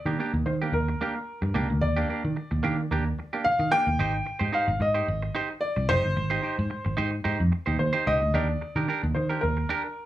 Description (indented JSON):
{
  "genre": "disco",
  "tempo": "110 BPM",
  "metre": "4/4",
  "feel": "straight",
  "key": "Eb major",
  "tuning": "A4 = 441 Hz",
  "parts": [
    { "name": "warm baby grand piano", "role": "melody", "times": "0.0-10.1 s", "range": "Bb4 to G5", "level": "-28 LUFS", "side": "left 1 dB", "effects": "none" },
    { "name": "semi-hollow electric guitar", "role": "accompaniment", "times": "0.1-9.9 s", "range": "Bb3 to C5", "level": "-29 LUFS", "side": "right 4 dB", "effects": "none" },
    { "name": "picked electric bass", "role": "bass", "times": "0.1-9.6 s", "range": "Gb1 to Eb3", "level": "-26 LUFS", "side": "equal", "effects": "none" }
  ],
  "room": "little or no reverb",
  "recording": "small room ambience",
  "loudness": "-24 LUFS",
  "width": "side -13 dB against mid",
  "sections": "0.0-10.1 A section",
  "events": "none",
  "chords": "0.0 Ebmaj7; 4.0 Abmaj7; 8.3 Ebmaj7"
}